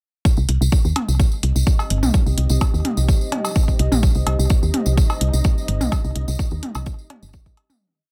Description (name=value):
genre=minimal techno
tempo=127 BPM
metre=4/4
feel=straight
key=C minor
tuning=A4 = 440 Hz
part: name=electronic kick drum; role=drums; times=0.2-7.6 s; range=none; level=-20 LUFS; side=equal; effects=none
part: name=tambourine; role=percussion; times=0.2-7.8 s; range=none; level=-35 LUFS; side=equal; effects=none
part: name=deep dark ambient pad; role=texture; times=1.5-7.8 s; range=C4 to Eb5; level=-33 LUFS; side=equal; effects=chorus, built-in reverb, sidechain pumping
part: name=woody FM bass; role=bass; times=0.4-7.4 s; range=G1 to Eb2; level=-21 LUFS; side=equal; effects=sidechain pumping
part: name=electronic hi-hat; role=drums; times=0.5-7.7 s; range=none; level=-29 LUFS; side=equal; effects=none
part: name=electronic toms and cowbell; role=percussion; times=1.0-7.8 s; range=none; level=-27 LUFS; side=equal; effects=none
part: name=flickering grainy texture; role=texture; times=4.7-7.8 s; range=Eb4 to Eb5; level=-39 LUFS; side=equal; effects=built-in reverb, sidechain pumping
room=little or no reverb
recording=none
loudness=-19 LUFS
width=mono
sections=0.3-7.8 groove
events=fade-out 5.3-7.8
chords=0.3 Cm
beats=| 0.25 0.72 1.20 1.67 | 2.14 2.61 3.08 3.56 | 4.03 4.50 4.97 5.45 | 5.92 6.39 6.87 7.34